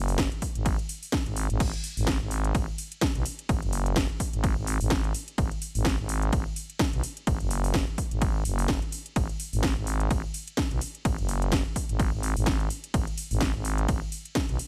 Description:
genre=bass house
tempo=127 BPM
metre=4/4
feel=swing 57% on 16ths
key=G# minor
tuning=A4 = 445 Hz
part: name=growling FM bass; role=bass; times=0.0-14.6 s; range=F#1 to B1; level=-30 LUFS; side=equal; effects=sidechain pumping
part: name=house drum kit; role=drums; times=0.1-14.7 s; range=crash cymbal, hi-hat, ride cymbal, snare drum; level=-35 LUFS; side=equal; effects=overdrive
part: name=electronic kick drum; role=drums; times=0.2-14.5 s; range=none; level=-31 LUFS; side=equal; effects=overdrive
room=little or no reverb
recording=none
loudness=-28 LUFS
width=mono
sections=0.0-14.7 A section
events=none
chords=none

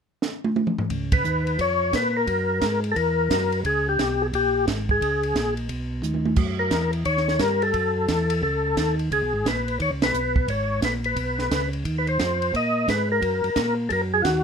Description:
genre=soul jazz organ trio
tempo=175 BPM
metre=4/4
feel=swing 64% on 8ths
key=unclear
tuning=A4 = 444 Hz
part: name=compact cocktail drum kit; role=drums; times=0.2-14.3 s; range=crash cymbal, hi-hat, kick drum, ride cymbal, snare drum, toms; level=-27 LUFS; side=right 3 dB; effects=none
part: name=tonewheel organ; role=bass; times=0.9-14.4 s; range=Ab1 to Bb2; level=-26 LUFS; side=equal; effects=none
part: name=percussive tonewheel organ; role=melody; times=1.1-14.4 s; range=F4 to Eb5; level=-23 LUFS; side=left 2 dB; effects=slow rotary speaker, overdrive, chorus vibrato
room=light reverb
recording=minimal, uncompressed stereo recording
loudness=-21 LUFS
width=side -6 dB against mid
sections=0.9-14.4 A section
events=drum fill 0.2-0.9, 6.0-6.4; band accent 1.1, 10.0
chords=0.0 N.C.; 0.9 Db13; 2.3 Gb9; 3.6 Dbsus2; 6.4 Gb6; 7.7 Gbm7; 9.1 Db5; 11.8 Ab69; 13.2 Gb6

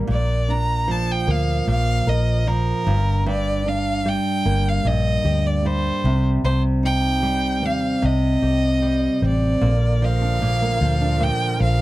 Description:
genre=acoustic pop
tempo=76 BPM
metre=4/4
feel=straight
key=Bb major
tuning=A4 = 440 Hz
part: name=flamenco guitar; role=accompaniment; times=0.0-11.8 s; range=G2 to Bb4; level=-22 LUFS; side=right 1 dB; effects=none
part: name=vintage muted fingered electric bass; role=bass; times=0.0-11.8 s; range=G1 to Eb2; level=-21 LUFS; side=equal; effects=none
part: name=clear violin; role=melody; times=0.1-11.8 s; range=Bb4 to Bb5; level=-24 LUFS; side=equal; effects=none
part: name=tonewheel organ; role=sustained chords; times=9.6-11.8 s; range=D3 to Bb4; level=-32 LUFS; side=equal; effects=overdrive, chorus vibrato, slow rotary speaker
room=light reverb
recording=dry, close 1970s-style studio recording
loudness=-18 LUFS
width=side -17 dB against mid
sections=0.0-9.6 A section; 9.6-11.8 B section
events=none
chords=0.1 Bb; 2.9 Gm; 6.0 Cm; 9.6 Bb

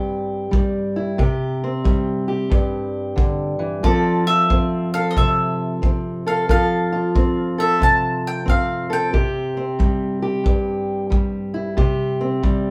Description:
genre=acoustic country blues, solo or duo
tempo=91 BPM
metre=4/4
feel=swing 65% on 8ths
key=C major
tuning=A4 = 441 Hz
part: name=mandolin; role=melody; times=0.0-10.9 s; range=D5 to A5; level=-24 LUFS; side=equal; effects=none
part: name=fingerpicked steel-string acoustic guitar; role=accompaniment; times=0.0-12.7 s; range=G2 to A4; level=-23 LUFS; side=equal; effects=none
part: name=kick drum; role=drums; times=0.5-12.6 s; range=none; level=-22 LUFS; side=equal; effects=none
room=moderate studio reverb, RT60 0.6 s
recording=band playing live in one room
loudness=-20 LUFS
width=mono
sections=0.0-12.7 A section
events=none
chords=0.0 C; 3.8 F; 9.1 C5

